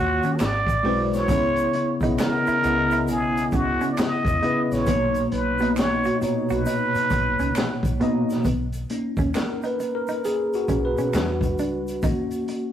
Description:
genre	R&B, neo-soul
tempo	67 BPM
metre	4/4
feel	swing 64% on 16ths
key	B major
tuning	A4 = 441 Hz
part	trumpet with plunger mute	melody	0.0-8.0 s	F#4 to D#5	-24 LUFS	right 1 dB	none
part	bell-like tine electric piano	accompaniment	0.0-12.7 s	A#2 to D#5	-24 LUFS	left 1 dB	medium stereo tremolo
part	vintage muted fingered electric bass	bass	0.0-12.4 s	G#1 to D#3	-30 LUFS	equal	none
part	semi-hollow electric guitar	second line	0.2-12.5 s	B3 to F#4	-30 LUFS	right 3 dB	harmonic tremolo
part	crunchy breakbeat drum kit	drums	0.2-12.7 s	handclaps, hi-hat, kick drum, snare drum	-27 LUFS	equal	none
part	egg shaker and finger snaps	percussion	0.2-12.5 s	none	-41 LUFS	right 1 dB	none
room	moderate stone room reverb, RT60 1.2 s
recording	rough rehearsal-room recording, warm saturation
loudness	-20 LUFS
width	side -10 dB against mid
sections	0.0-8.4 A section; 8.4-12.7 B section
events	tine electric piano solo 8.4-12.7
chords	0.4 G#7alt; 1.3 C#m7; 4.9 Bmaj9; 11.1 Em7; 12.0 D#m7

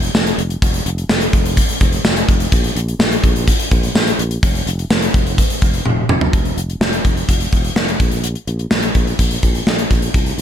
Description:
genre	1980s-style pop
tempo	126 BPM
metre	4/4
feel	straight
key	unclear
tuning	A4 = 439 Hz
part	sustaining fretless electric bass	bass	0.0-10.4 s	E1 to C2	-21 LUFS	equal	none
part	gated 80s drum kit	drums	0.0-10.4 s	hi-hat, kick drum, snare drum, tambourine, toms	-14 LUFS	equal	gated reverb
room	little or no reverb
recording	none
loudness	-14 LUFS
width	side -9 dB against mid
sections	0.0-6.3 A section; 6.3-10.4 B section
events	drum fill 5.9-6.3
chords	none

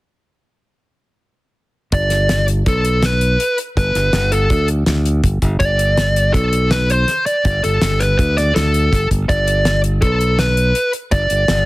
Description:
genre	progressive instrumental, band music in an uneven meter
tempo	163 BPM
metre	5/4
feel	straight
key	G major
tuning	A4 = 440 Hz
part	fuzz lead guitar	melody	1.9-11.6 s	A4 to D5	-17 LUFS	equal	distortion, plate reverb
part	modern bright fingered electric bass	bass	1.9-11.7 s	G1 to D2	-17 LUFS	equal	none
part	damped 70s drum kit	drums	1.9-11.6 s	hi-hat, kick drum, snare drum	-19 LUFS	equal	none
room	little or no reverb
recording	heavily compressed radio sound, multiband compression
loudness	-13 LUFS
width	side -19 dB against mid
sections	1.9-11.7 A section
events	none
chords	1.9 Gadd9

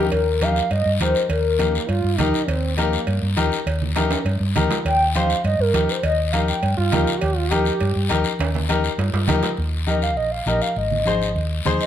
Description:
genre	latin, cumbia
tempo	203 BPM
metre	4/4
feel	straight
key	Eb major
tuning	A4 = 439 Hz
part	hollow clarinet-like synth lead	melody	0.0-1.9, 4.9-6.8, 9.9-11.9 s	Bb4 to G5	-21 LUFS	equal	chorus
part	dark trombone	second line	0.0-3.3, 6.8-8.1 s	Bb3 to G4	-26 LUFS	right 5 dB	none
part	bright upright piano	accompaniment	0.0-11.9 s	Eb4 to C5	-25 LUFS	left 6 dB	none
part	hollow-body short-scale fingered electric bass	bass	0.0-11.8 s	Ab1 to G2	-22 LUFS	equal	none
part	congas	percussion	0.1-11.8 s	none	-27 LUFS	right 2 dB	none
part	cowbell and timbales	percussion	0.1-9.5 s	none	-30 LUFS	right 6 dB	none
part	guiro	percussion	0.1-11.9 s	none	-30 LUFS	left 6 dB	none
room	light reverb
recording	close, detailed microphones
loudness	-18 LUFS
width	side -10 dB against mid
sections	0.1-9.6 A section; 9.6-11.9 B section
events	drum fill 4.0-4.8, 8.4-9.6; soft synth lead solo 9.6-11.9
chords	0.1 Eb; 10.8 Ab

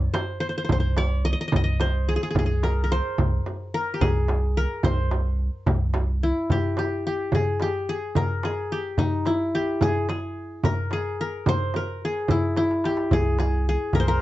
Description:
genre	Arabic maqam ensemble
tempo	72 BPM (dotted quarters)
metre	6/8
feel	straight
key	C maqam saba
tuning	A4 = 441 Hz
part	qanun	melody	0.0-14.2 s	Eb4 to Eb5	-26 LUFS	left 1 dB	none
part	pure sine sub bass	bass	0.0-6.3, 13.1-14.2 s	C2	-24 LUFS	right 1 dB	none
part	darbuka	percussion	0.1-14.1 s	none	-28 LUFS	left 1 dB	none
part	frame drum	percussion	0.1-14.1 s	none	-28 LUFS	right 2 dB	none
room	moderate studio reverb, RT60 0.6 s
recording	dark, warm production, nothing above 7.9 kHz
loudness	-22 LUFS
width	side -16 dB against mid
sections	0.0-6.5 A section; 6.5-14.2 B section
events	drum fill 12.6-13.1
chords	none

